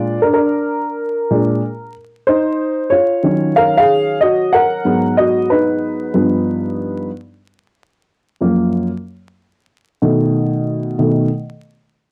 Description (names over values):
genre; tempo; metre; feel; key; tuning
hip hop; 93 BPM; 4/4; swing 66% on 16ths; unclear; A4 = 440 Hz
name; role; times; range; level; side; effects
dark upright piano; solo; 0.0-11.3 s; Gb2 to Gb5; -16 LUFS; equal; cassette tape
room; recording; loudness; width
moderate studio reverb, RT60 0.6 s; home recording on cassette, vinyl crackle; -16 LUFS; mono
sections
0.0-12.1 A section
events
upright piano solo 0.0-12.1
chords
0.0 Bb7; 2.3 Ebm9; 4.9 Abm9; 6.1 G7; 7.4 Gbmaj7; 10.0 B7